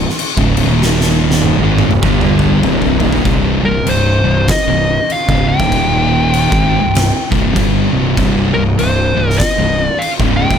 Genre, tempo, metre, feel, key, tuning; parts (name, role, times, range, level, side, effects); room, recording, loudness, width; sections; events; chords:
stoner and doom metal; 98 BPM; 4/4; swing 60% on 8ths; C minor; A4 = 440 Hz
thick fuzz guitar; riff; 0.0-10.6 s; C2 to Ab3; -17 LUFS; left 8 dB; distortion
thick fuzz guitar; riff; 0.0-10.6 s; C2 to Ab3; -17 LUFS; right 9 dB; distortion
fuzz fingered electric bass; bass; 0.0-10.6 s; C1 to Ab1; -18 LUFS; equal; overdrive
oversized low-tuned drum kit; drums; 0.1-10.6 s; crash cymbal, kick drum, snare drum, toms; -17 LUFS; equal
fuzz lead guitar; melody; 3.7-10.6 s; Bb4 to G5; -17 LUFS; left 1 dB; distortion, tape echo
little or no reverb; -11 LUFS; side -8 dB against mid
0.0-3.3 A section; 3.3-10.6 B section
drum fill 0.8-3.3
0.0 N.C.; 0.7 Eb5; 1.6 Cm; 2.0 G5; 2.6 Cm; 5.6 Eb5; 6.5 Cm